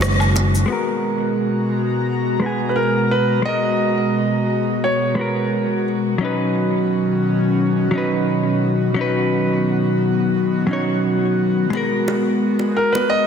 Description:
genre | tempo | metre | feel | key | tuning
sunset chillout | 87 BPM | 4/4 | straight | G# minor | A4 = 441 Hz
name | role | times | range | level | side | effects
hollow-body jazz guitar | accompaniment | 0.0-13.3 s | F#3 to C#5 | -20 LUFS | moving between left 5 dB and right 3 dB | auto-pan, low-pass filter, ping-pong delay, shimmer reverb
airy breathy pad | sustained chords | 0.0-13.3 s | B2 to A#5 | -22 LUFS | left 1 dB | chorus, shimmer reverb
overdriven fingered electric bass | bass | 0.0-0.6 s | F#1 | -17 LUFS | equal | none
deep house drum kit | drums | 0.0-0.7 s | hi-hat, rim click, shaker, woodblock | -24 LUFS | left 1 dB | low-pass filter on perc, low-pass filter on hats, low-pass filter on snare, low-pass filter on room
bongos | percussion | 0.0-0.5, 11.7-13.1 s | none | -30 LUFS | right 2 dB | none
warm grand piano | melody | 2.7-5.8, 12.8-13.3 s | A#4 to D#5 | -20 LUFS | right 1 dB | ping-pong delay, shimmer reverb
room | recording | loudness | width
moderate lush hall reverb, RT60 2.5 s | dense, heavily limited modern master | -16 LUFS | side -7 dB against mid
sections
0.7-13.3 A section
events
band accent 0.0-0.4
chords
0.0 F#69; 0.7 G#m9; 6.2 C#9sus4; 11.7 G#m9

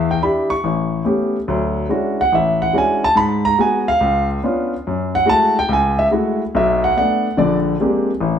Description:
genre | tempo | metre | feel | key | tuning
solo jazz | 143 BPM | 4/4 | swing 68% on 8ths | unclear | A4 = 440 Hz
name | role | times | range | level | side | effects
warm grand piano | solo | 0.0-8.4 s | A1 to C#6 | -15 LUFS | equal | none
room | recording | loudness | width
wet stone room reverb, RT60 1.2 s | band playing live in one room | -15 LUFS | side -8 dB against mid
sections
0.0-8.2 A section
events
grand piano solo 0.0-8.2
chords
0.0 Em7; 0.6 A9; 1.5 Dmaj9#11; 3.2 G#m13; 4.0 C#7b9; 4.8 F#m9; 6.5 Bm7; 7.4 Bb13

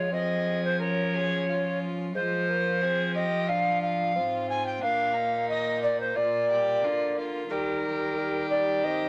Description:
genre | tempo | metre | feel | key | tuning
classical, renaissance-style consort dance | 90 BPM | 4/4 | straight | unclear | A4 = 440 Hz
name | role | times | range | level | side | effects
bright tenor recorder | melody | 0.0-9.1 s | Bb4 to Ab5 | -29 LUFS | equal | none
rich violin | second line | 0.0-9.1 s | D4 to Bb4 | -38 LUFS | equal | none
dark bassoon | accompaniment | 0.0-9.1 s | G3 to D4 | -37 LUFS | equal | none
rich cello | bass | 0.0-9.1 s | Ab2 to F3 | -35 LUFS | equal | none
room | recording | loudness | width
moderate studio reverb, RT60 0.7 s | none | -27 LUFS | mono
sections
0.0-9.1 A section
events
none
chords
0.0 Db/F; 2.1 Fm; 4.8 Bbsus4; 6.2 Bb; 7.5 Eb

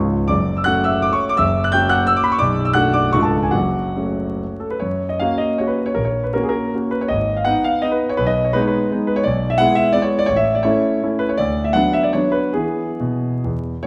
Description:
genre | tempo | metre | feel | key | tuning
classical, romantic triple-time dance for piano with dotted rhythms | 127-188 BPM | 3/4 | rubato | F# minor, F# major from 4.8 s | A4 = 440 Hz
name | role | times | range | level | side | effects
clear concert grand piano | solo | 0.0-13.9 s | B0 to G6 | -18 LUFS | equal | none
room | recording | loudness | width
wet recital hall reverb, RT60 1.6 s | vinyl crackle | -18 LUFS | mono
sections
0.0-4.8 A section; 4.8-13.9 B section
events
none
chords
0.3 F#m; 1.4 F#7; 2.4 Bm7; 3.1 C#; 3.5 F#m; 4.8 F#; 6.0 F#/A#; 7.1 G#m; 8.2 G#m/B; 9.3 E/B; 10.3 A; 11.4 Bm/D; 12.6 E

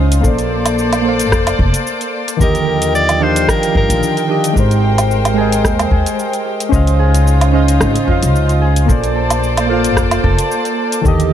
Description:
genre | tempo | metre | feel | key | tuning
sunset chillout | 111 BPM | 4/4 | swing 54% on 16ths | unclear | A4 = 444 Hz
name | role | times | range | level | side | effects
soft electric-piano-like synth keys | accompaniment | 0.0-11.3 s | D3 to G5 | -17 LUFS | right 1 dB | chorus, auto-pan, tape echo
warm chamber string section | sustained chords | 0.0-11.3 s | Db3 to G5 | -20 LUFS | left 1 dB | vintage 12-bit sampler grit
upright bass | bass | 0.0-11.3 s | F1 to G2 | -15 LUFS | equal | none
deep house drum kit | drums | 0.1-11.3 s | cabasa, hi-hat, rim click, woodblock | -21 LUFS | right 1 dB | overdrive
electronic kick drum | drums | 0.2-11.2 s | none | -17 LUFS | equal | none
bright soprano saxophone | melody | 2.4-4.3 s | Bb4 to D5 | -19 LUFS | right 1 dB | tape echo
concert harp | arpeggios | 4.8-11.3 s | F4 to A4 | -22 LUFS | right 2 dB | tape echo
room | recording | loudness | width
light reverb, studio reverb | none | -11 LUFS | side -10 dB against mid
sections
0.0-11.3 A section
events
none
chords
0.2 Bbmaj9; 2.4 Ebmaj9; 4.6 Abmaj9; 6.7 Dbmaj9; 8.9 Bbmaj9

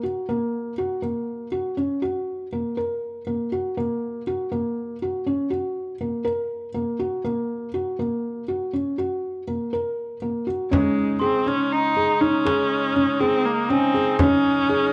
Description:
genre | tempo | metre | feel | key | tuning
contemporary instrumental, chamber music in an uneven meter | 121 BPM | 7/4 | straight | unclear | A4 = 443 Hz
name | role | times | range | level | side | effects
felt-muted upright piano | arpeggios | 0.0-14.9 s | Bb3 to Bb4 | -26 LUFS | equal | none
warm viola | second line | 10.7-14.9 s | Ab3 to Eb4 | -25 LUFS | equal | none
mellow woodwind section | sustained chords | 10.7-14.9 s | Db3 to Eb4 | -31 LUFS | equal | none
frame drum | percussion | 10.7-14.4 s | none | -27 LUFS | equal | none
glockenspiel with soft plastic mallets | texture | 11.2-14.4 s | Ab5 to C6 | -34 LUFS | equal | none
room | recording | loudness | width
light reverb | dark, warm production | -24 LUFS | mono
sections
0.0-10.7 A section; 10.7-14.9 B section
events
none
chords
0.0 Gb; 10.7 Absus4

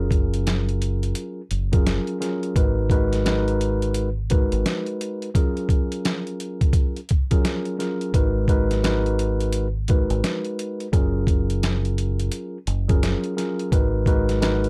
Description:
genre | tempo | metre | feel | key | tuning
hip hop, boom-bap hip-hop | 86 BPM | 4/4 | swing 63% on 16ths | unclear | A4 = 441 Hz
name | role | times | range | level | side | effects
mellow tine electric piano | accompaniment | 0.0-14.7 s | F#3 to B4 | -28 LUFS | equal | cassette tape, high-pass filter, low-pass filter
deep dub fingered electric bass | bass | 0.0-14.7 s | F#1 to G#1 | -26 LUFS | equal | none
boom bap sampler-style drum kit | drums | 0.1-14.7 s | hi-hat, kick drum, snare drum | -24 LUFS | equal | none
room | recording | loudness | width
little or no reverb | dark, warm production | -23 LUFS | mono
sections
0.0-14.7 A section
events
none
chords
0.0 F#maj9; 2.6 G#m7; 5.3 F#maj9; 8.1 G#m7; 10.9 F#maj9; 13.7 G#m7

